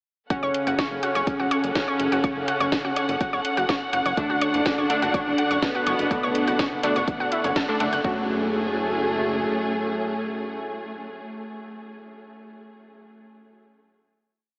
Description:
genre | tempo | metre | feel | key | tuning
melodic techno | 124 BPM | 4/4 | straight | F# minor | A4 = 439 Hz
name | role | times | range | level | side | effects
analog synth brass | melody | 0.3-11.2 s | B2 to D4 | -32 LUFS | equal | chorus, sidechain pumping, tape echo
airy dreamy lead | second line | 0.3-11.2 s | A2 to D3 | -35 LUFS | equal | none
warm symphonic string section | sustained chords | 0.3-11.2 s | F#3 to F#5 | -31 LUFS | equal | sidechain pumping
analog pluck | arpeggios | 0.3-8.3 s | C#4 to F#6 | -31 LUFS | equal | chorus, sidechain pumping, diffuse ambient delay
electronic kick drum | drums | 0.3-8.1 s | none | -30 LUFS | equal | none
techno drum kit | drums | 0.3-8.0 s | hi-hat, snare drum | -34 LUFS | equal | none
fat analog bass | bass | 0.4-9.5 s | E1 to F#1 | -36 LUFS | equal | sidechain pumping
synth brass stab | stabs | 4.2-11.2 s | D3 to F#4 | -33 LUFS | equal | none
room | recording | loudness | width
wet huge ambient reverb, RT60 7.9 s | dreamy mix soaked in reverb, AM radio sound | -24 LUFS | mono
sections
0.3-8.0 drop; 8.0-11.9 final chord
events
drop 0.3-8.0; band accent 7.6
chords
0.3 F#m; 4.2 D; 8.0 F#m

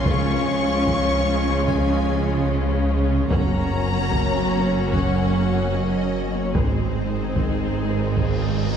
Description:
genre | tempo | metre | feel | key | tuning
cinematic, hybrid orchestral and electronic film score | 74 BPM | 4/4 | straight | unclear | A4 = 440 Hz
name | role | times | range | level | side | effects
warm symphonic violin section | melody | 0.0-8.8 s | C5 to Db6 | -30 LUFS | left 4 dB | none
warm symphonic violin section | second line | 0.0-8.8 s | Eb4 to Db5 | -29 LUFS | left 2 dB | none
rich symphonic viola section | accompaniment | 0.0-8.8 s | Ab3 to Db4 | -29 LUFS | equal | none
warbly tape-like pad | sustained chords | 0.0-8.8 s | Eb3 to Db5 | -29 LUFS | left 1 dB | chorus, built-in reverb
warm trombone section | sustained chords | 0.0-8.8 s | Eb3 to Db4 | -29 LUFS | right 3 dB | none
dark detuned saw bass | bass | 0.0-8.8 s | Gb1 to Db2 | -29 LUFS | left 1 dB | none
rich symphonic double bass section | bass | 0.1-8.8 s | Gb1 to Db2 | -26 LUFS | right 2 dB | none
warm symphonic cello section | bass | 0.1-8.8 s | Gb2 to Db3 | -26 LUFS | right 2 dB | none
solo taiko drums | drums | 0.1-8.8 s | none | -26 LUFS | equal | none
cymbal swell | sound effects | 7.9-8.8 s | none | -36 LUFS | left 1 dB | none
room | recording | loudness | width
wet scoring stage reverb, RT60 1.9 s | heard from further back in the room, nothing above 10.3 kHz | -19 LUFS | side -8 dB against mid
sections
0.0-8.8 A section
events
cymbal swell 7.9-8.8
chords
0.1 Db; 3.3 Gb; 6.5 Ab

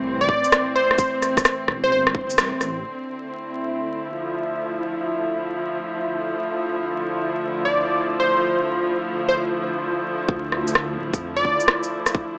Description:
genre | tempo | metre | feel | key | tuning
future garage | 129 BPM | 4/4 | swing 66% on 16ths | unclear | A4 = 441 Hz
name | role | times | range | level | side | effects
dark studio string section | sustained chords | 0.0-12.4 s | A2 to E4 | -28 LUFS | equal | sidechain pumping
dark detuned saw bass | bass | 0.0-2.8, 10.3-11.6 s | D1 to F2 | -34 LUFS | equal | tube saturation, sidechain pumping
plucky unison lead | melody | 0.2-2.0, 7.7-11.8 s | C5 to D5 | -24 LUFS | equal | cassette tape, analog delay
electronic kick drum | drums | 0.3-2.3, 10.3-12.3 s | none | -27 LUFS | equal | none
electronic shaker and rim click | drums | 0.4-2.7, 10.5-12.1 s | none | -22 LUFS | equal | low-pass filter on perc, low-pass filter on snare, low-pass filter on room
wind-like tuned noise texture | texture | 3.3-9.4 s | E4 to E5 | -33 LUFS | equal | built-in reverb
room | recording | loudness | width
wet digital room reverb, RT60 1.0 s, digital ambience | vinyl crackle, small speaker sound | -23 LUFS | mono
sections
0.0-2.8 A section; 2.8-10.3 B section; 10.3-12.4 C section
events
band accent 2.4; break 9.4-10.3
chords
0.0 Am7; 2.8 Dm9; 10.3 Dmadd9

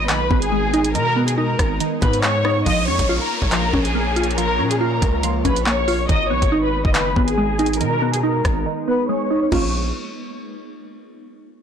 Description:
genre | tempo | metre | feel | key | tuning
hip hop, drill | 140 BPM | 4/4 | half-time | Bb phrygian | A4 = 440 Hz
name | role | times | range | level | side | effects
dark studio violin section | melody | 0.0-9.7 s | Ab4 to Eb6 | -22 LUFS | left 2 dB | low-pass filter, digital delay
glassy wavetable pluck | accompaniment | 0.0-9.7 s | Eb3 to F4 | -22 LUFS | right 1 dB | chorus, low-pass filter
granular cloud pad | sustained chords | 0.0-9.7 s | Ab3 to Db5 | -29 LUFS | equal | built-in reverb, low-pass filter
distorted 808-style bass | bass | 0.0-9.9 s | Gb1 to Cb3 | -24 LUFS | equal | distortion
drill drum kit | drums | 0.1-9.6 s | crash cymbal, handclaps, hi-hat, kick drum, rim click | -22 LUFS | equal | none
downlifter | sound effects | 2.7-6.1 s | none | -29 LUFS | equal | none
room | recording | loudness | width
little or no reverb | blown-out, overdriven recording, overdrive | -16 LUFS | side -8 dB against mid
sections
0.0-2.7 A section; 2.7-9.5 B section; 9.5-11.2 C section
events
filter sweep 2.7-9.5; drums muted 8.7-9.5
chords
0.0 Abm; 2.7 Bbm; 6.1 Abm; 9.5 Bbm

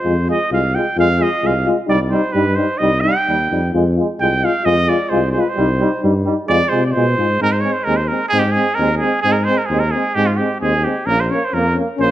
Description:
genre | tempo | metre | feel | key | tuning
balkan folk, Balkan brass band | 131 BPM | 2/4 | straight | F dorian sharp4, Ab major from 7.4 s | A4 = 437 Hz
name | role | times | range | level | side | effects
cornet with straight mute | melody | 0.0-12.1 s | F4 to G5 | -18 LUFS | right 2 dB | none
clear euphonium | accompaniment | 0.0-12.1 s | C4 to F4 | -21 LUFS | left 4 dB | none
clear euphonium | accompaniment | 0.0-12.1 s | G3 to Bb3 | -22 LUFS | right 4 dB | none
mellow tuba | bass | 0.0-12.1 s | Bb1 to C3 | -20 LUFS | equal | none
room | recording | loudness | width
moderate recital hall reverb, RT60 1.4 s | none | -14 LUFS | side -13 dB against mid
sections
0.0-7.4 A section; 7.4-12.1 B section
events
cornet solo 0.0-7.4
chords
0.0 Fm; 1.9 Cm; 3.7 Fm; 5.6 Cm; 6.5 Fm; 7.4 Ab; 11.1 Bbm

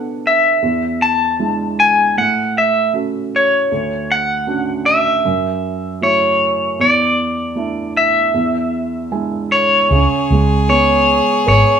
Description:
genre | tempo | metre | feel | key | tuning
acoustic folk-pop ballad | 78 BPM | 4/4 | straight | unclear | A4 = 442 Hz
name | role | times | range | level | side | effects
felt-muted upright piano | accompaniment | 0.0-11.8 s | D2 to G#5 | -20 LUFS | right 3 dB | none
electric guitar at the edge of break-up | melody | 0.3-11.8 s | C#5 to A5 | -14 LUFS | left 1 dB | harmonic tremolo
bright violin | second line | 9.9-11.8 s | G#4 | -18 LUFS | left 1 dB | none
vintage muted fingered electric bass | bass | 9.9-11.6 s | G#1 to C#2 | -15 LUFS | equal | none
room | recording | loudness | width
moderate large studio reverb, RT60 1.0 s | band playing live in one room | -13 LUFS | side -8 dB against mid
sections
0.0-9.9 A section; 9.9-11.8 B section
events
none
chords
0.0 Bm7; 0.6 E7; 2.2 A6; 3.7 Dmaj7; 5.2 F#m7; 6.8 E7sus4; 8.3 E7; 9.9 C#7(no3)

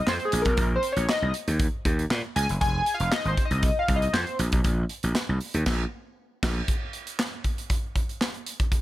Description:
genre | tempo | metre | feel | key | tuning
early-eighties boogie funk | 118 BPM | 4/4 | straight | F minor | A4 = 440 Hz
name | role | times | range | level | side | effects
chorused polysynth | accompaniment | 0.0-4.4 s | Ab4 to Ab5 | -26 LUFS | left 1 dB | none
gritty slap bass | bass | 0.1-6.6 s | F1 to Bb2 | -26 LUFS | equal | overdrive
modern studio drum kit | drums | 0.1-8.8 s | crash cymbal, handclaps, hi-hat, kick drum, snare drum | -27 LUFS | equal | none
room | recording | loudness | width
small room reverb | none | -23 LUFS | side -15 dB against mid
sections
0.0-6.7 A section; 6.7-8.8 B section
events
analog polysynth solo 0.0-6.7; band accent 5.7-6.7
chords
0.3 Bbmadd9; 2.6 Fm; 4.4 N.C.

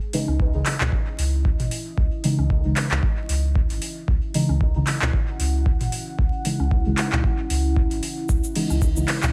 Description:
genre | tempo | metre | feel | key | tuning
dub techno | 114 BPM | 4/4 | swing 56% on 16ths | C# minor | A4 = 439 Hz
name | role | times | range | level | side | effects
deep dark ambient pad | sustained chords | 0.0-9.3 s | C#4 to F#5 | -35 LUFS | equal | chorus, built-in reverb, sidechain pumping
deep mellow chord stab | stabs | 0.1-9.1 s | C#3 to D#4 | -28 LUFS | equal | chorus, phaser, sidechain pumping, dub echo
deep house drum kit | drums | 0.1-9.3 s | handclaps, hi-hat, ride cymbal, shaker | -30 LUFS | equal | overdrive
pure sine sub bass | bass | 0.3-9.3 s | G#1 to C#2 | -26 LUFS | equal | tube saturation, sidechain pumping
electronic bongos and toms | percussion | 0.3-9.3 s | none | -34 LUFS | equal | overdrive, sidechain pumping on perc, sidechain pumping on toms, dub echo
electronic kick drum | drums | 0.4-8.9 s | none | -25 LUFS | equal | overdrive
room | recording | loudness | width
light reverb | vinyl crackle | -22 LUFS | mono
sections
0.0-9.3 A section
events
none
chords
0.0 C#madd9

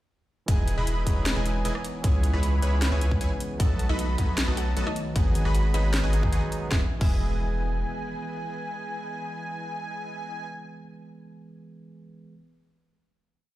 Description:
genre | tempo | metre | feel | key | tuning
future bass | 154 BPM | 4/4 | half-time | E major | A4 = 440 Hz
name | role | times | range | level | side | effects
barky tine electric piano | accompaniment | 0.5-12.3 s | E3 to D#5 | -36 LUFS | right 3 dB | sidechain pumping, ping-pong delay
ethereal airy pad | sustained chords | 1.3-10.2 s | C#3 to B4 | -39 LUFS | left 2 dB | ensemble chorus, built-in reverb, sidechain pumping
airy dreamy lead | arpeggios | 0.5-10.5 s | G#5 to B5 | -37 LUFS | equal | chorus, sidechain pumping, ping-pong delay
supersaw stab | riff | 0.5-10.5 s | E4 to B5 | -36 LUFS | equal | vintage 12-bit sampler grit, sidechain pumping, ping-pong delay
saturated sub bass | bass | 0.5-7.8 s | E1 to C#2 | -25 LUFS | equal | sidechain pumping
electronic kick drum | drums | 0.5-7.1 s | none | -24 LUFS | equal | none
trap drum kit | drums | 0.5-7.1 s | crash cymbal, hi-hat, rim click, snare drum | -32 LUFS | equal | none
mallet-like synth pluck | melody | 3.6-10.5 s | D#4 to F#5 | -38 LUFS | right 1 dB | wide subtle chorus, sidechain pumping, ping-pong delay
room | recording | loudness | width
little or no reverb | played on a big sound system in a bare room, large studio reverb | -24 LUFS | side -15 dB against mid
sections
0.5-6.7 drop; 6.7-9.8 final chord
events
drop 0.5-6.7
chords
0.5 Emaj7; 2.0 C#m7; 3.6 B7; 5.2 G#m7; 6.7 Emaj7

